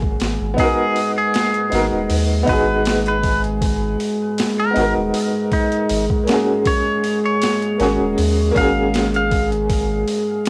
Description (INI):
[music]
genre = trip hop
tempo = 79 BPM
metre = 4/4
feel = swing 54% on 16ths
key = G# minor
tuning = A4 = 445 Hz
[part]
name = warm upright piano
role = accompaniment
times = 0.0-10.5 s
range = A#3 to A#4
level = -24 LUFS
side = equal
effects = tremolo, cassette tape
[part]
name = dark analog pad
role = sustained chords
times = 0.0-10.5 s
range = G#3 to G#4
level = -24 LUFS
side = equal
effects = chorus, vintage 12-bit sampler grit, cassette tape
[part]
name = soft dub sub bass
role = bass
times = 0.0-10.0 s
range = D#1 to D#2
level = -25 LUFS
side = equal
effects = none
[part]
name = boom bap sampler-style drum kit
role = drums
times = 0.0-10.5 s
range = hi-hat, kick drum, snare drum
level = -26 LUFS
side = equal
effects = overdrive, cassette tape
[part]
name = clean lap steel guitar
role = melody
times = 0.6-9.5 s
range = D#4 to E#5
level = -25 LUFS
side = equal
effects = vintage 12-bit sampler grit, cassette tape, tape echo
[sound]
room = light reverb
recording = home recording on cassette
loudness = -18 LUFS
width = mono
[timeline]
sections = 0.6-10.5 A section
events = none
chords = 0.0 F#add9; 0.6 G#m7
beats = | 0.58 1.34 2.10 2.86 | 3.62 4.38 5.14 5.90 | 6.66 7.42 8.18 8.94 | 9.69 10.45